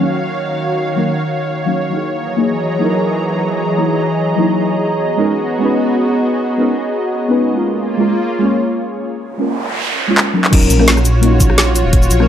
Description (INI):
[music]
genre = liquid drum and bass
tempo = 171 BPM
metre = 4/4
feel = swing 54% on 16ths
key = Eb minor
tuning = A4 = 438 Hz
[part]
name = deep mellow chord stab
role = accompaniment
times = 0.0-12.3 s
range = Gb3 to Db5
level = -17 LUFS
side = equal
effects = chorus, dub echo
[part]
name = lush unison pad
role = sustained chords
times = 0.0-12.3 s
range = Eb3 to Bb5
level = -17 LUFS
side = equal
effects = chorus
[part]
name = concert harp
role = arpeggios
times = 0.0-2.0 s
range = Db4 to F5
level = -36 LUFS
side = left 2 dB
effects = none
[part]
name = noise sweep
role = sound effects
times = 9.3-10.5 s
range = none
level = -22 LUFS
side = right 3 dB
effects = none
[part]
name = garage drum kit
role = drums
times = 10.2-12.3 s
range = cabasa, crash cymbal, handclaps, hi-hat, rim click, snare drum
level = -15 LUFS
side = equal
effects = low-pass filter on hats, low-pass filter on perc, low-pass filter on cymbals, low-pass filter on snare, low-pass filter on room
[part]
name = dark detuned saw bass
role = bass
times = 10.5-12.3 s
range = Eb1 to Bb1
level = -14 LUFS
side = equal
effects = none
[part]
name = electronic kick drum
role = drums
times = 10.5-12.0 s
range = none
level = -12 LUFS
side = equal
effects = none
[sound]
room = light reverb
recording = none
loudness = -13 LUFS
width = side -10 dB against mid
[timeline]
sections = 0.0-10.5 A section; 10.5-12.3 B section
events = noise sweep 9.3-10.5; drum fill 10.2-10.5; drop 10.5-12.3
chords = 0.0 Ebm7; 2.1 Gb13; 4.9 Bmaj13; 7.5 Bbm7; 10.5 Ebm7